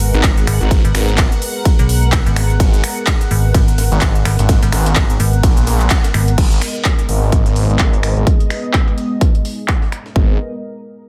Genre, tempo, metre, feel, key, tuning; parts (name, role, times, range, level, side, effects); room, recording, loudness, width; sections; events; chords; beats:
bass house; 127 BPM; 4/4; swing 57% on 16ths; G# minor; A4 = 440 Hz
sweeping resonant pad; sustained chords; 0.0-10.4 s; G#3 to F#5; -26 LUFS; equal; chorus, sidechain pumping
metallic FM bass; bass; 0.0-6.4 s; G#1 to B1; -17 LUFS; equal; overdrive, sidechain pumping
big-room dance drum kit; drums; 0.0-10.1 s; crash cymbal, finger snaps, handclaps, hi-hat, ride cymbal; -24 LUFS; equal; low-pass filter on hats, low-pass filter on snare, low-pass filter on cymbals, low-pass filter on room
breakbeat sampler-style drum kit; drums; 0.0-10.2 s; hi-hat, snare drum; -33 LUFS; equal
phased detuned saw bass; bass; 0.1-10.4 s; G#1 to A#1; -18 LUFS; equal; phaser, tube saturation, sidechain pumping
electronic kick drum; drums; 0.2-10.3 s; -16 LUFS; equal
digital ambience; -14 LUFS; mono
0.0-6.4 A section; 6.4-10.2 B section
drop 0.0-6.4; band accent 5.9; filter sweep on drum 6.4-10.2; filter sweep on analog synth pad 6.4-10.2
0.0 G#madd9
0.24 | 0.71 1.18 1.65 2.13 | 2.60 3.07 3.54 4.02 | 4.49 4.96 5.43 5.91 | 6.38 6.85 7.32 7.80 | 8.27 8.74 9.21 9.69 | 10.16